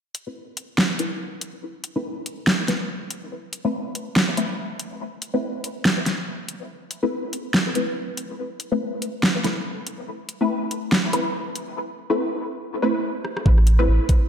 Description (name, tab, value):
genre	deep dubstep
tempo	142 BPM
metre	4/4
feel	swing 57% on 16ths, half-time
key	A minor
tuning	A4 = 440 Hz
part	dubstep drum kit	drums	0.1-14.2 s	hi-hat, rim click, snare drum	-22 LUFS	equal	overdrive
part	filtered dub chord stab	stabs	0.3-13.9 s	A3 to B4	-26 LUFS	left 2 dB	phaser, ensemble chorus, vintage 12-bit sampler grit, dub echo
part	soft dub sub bass	bass	13.5-14.0 s	A1	-16 LUFS	equal	none
part	electronic kick drum	drums	13.5-14.2 s	none	-16 LUFS	equal	overdrive
room	moderate lush hall reverb, RT60 1.9 s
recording	dreamy mix soaked in reverb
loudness	-21 LUFS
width	side -8 dB against mid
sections	0.0-13.5 A section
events	filter sweep on synth stab 0.0-13.5; drum fill 13.2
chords	0.0 Amadd9